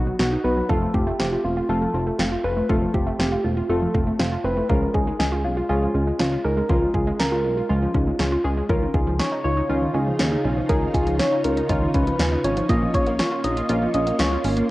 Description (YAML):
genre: synth-pop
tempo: 120 BPM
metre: 4/4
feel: straight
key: unclear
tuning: A4 = 440 Hz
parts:
  - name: soft struck synth lead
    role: melody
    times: 0.0-14.6 s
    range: F4 to Eb5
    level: -26 LUFS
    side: equal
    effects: chorus, phaser
  - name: warm analog keys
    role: accompaniment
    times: 0.0-14.6 s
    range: Ab3 to Ab4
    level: -26 LUFS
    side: left 1 dB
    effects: chorus, cassette tape
  - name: wide unison pluck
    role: arpeggios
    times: 0.0-14.7 s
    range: Eb3 to F4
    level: -29 LUFS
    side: right 1 dB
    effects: cassette tape, analog delay
  - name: chorused synth bass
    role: bass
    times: 0.0-14.6 s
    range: Fb1 to Eb2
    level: -25 LUFS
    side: equal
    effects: none
  - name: house drum kit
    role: drums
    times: 0.2-14.7 s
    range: hi-hat, kick drum, snare drum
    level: -25 LUFS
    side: equal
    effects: cassette tape
  - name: soft string machine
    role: sustained chords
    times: 8.7-14.7 s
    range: Db3 to F4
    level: -28 LUFS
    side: equal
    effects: ensemble chorus, cassette tape
room: moderate spring reverb, RT60 1.9 s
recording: home recording on cassette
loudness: -19 LUFS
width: side -18 dB against mid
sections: 0.0-8.7 A section; 8.7-14.7 B section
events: none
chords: 0.0 B; 0.7 F; 4.7 Db; 8.7 Dbadd9; 12.7 Bbm